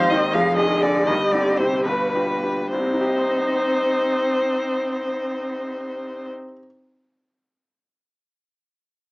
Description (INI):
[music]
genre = quick classical-period movement for piano quartet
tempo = 67-85 BPM (dotted quarters)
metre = 6/8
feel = rubato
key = C minor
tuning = A4 = 441 Hz
[part]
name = rich violin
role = melody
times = 0.0-6.3 s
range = B4 to F5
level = -22 LUFS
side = left 1 dB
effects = none
[part]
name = rich cello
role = second line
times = 0.0-6.3 s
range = B2 to C4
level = -28 LUFS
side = right 1 dB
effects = none
[part]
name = clear grand piano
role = accompaniment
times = 0.0-6.7 s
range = F1 to Eb5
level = -26 LUFS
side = equal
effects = none
[part]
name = warm viola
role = accompaniment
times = 0.0-6.3 s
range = Eb4 to C5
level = -26 LUFS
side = equal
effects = none
[sound]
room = light reverb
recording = small speaker sound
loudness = -19 LUFS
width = side -25 dB against mid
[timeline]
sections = 0.0-2.7 A section; 2.7-6.2 B section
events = slowing down 0.0-2.7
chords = 0.3 Ddim/F; 1.1 Cm/G; 1.9 G7; 2.7 Cm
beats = 0.34 | 1.07 1.85 | 2.72 3.60 | 4.45 5.32